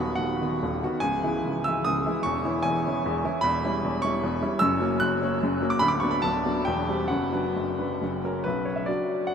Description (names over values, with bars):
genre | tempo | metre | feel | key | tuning
classical, romantic triple-time dance for piano with dotted rhythms | 125-165 BPM | 3/4 | rubato | B minor from 3.4 s | A4 = 440 Hz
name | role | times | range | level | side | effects
clear baby grand piano | solo | 0.0-9.3 s | C#1 to F#6 | -23 LUFS | equal | none
room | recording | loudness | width
wet huge ambient reverb, RT60 7.1 s | in a vast, echoing space | -23 LUFS | side -7 dB against mid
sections
0.0-8.5 A section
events
none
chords
0.0 B/D#; 1.0 C#m; 2.2 C#m/E; 3.4 C#m7b5/E; 4.6 F#; 5.8 Bm/D; 6.7 C/E; 7.1 Bm/F#; 8.0 F#; 8.5 Bm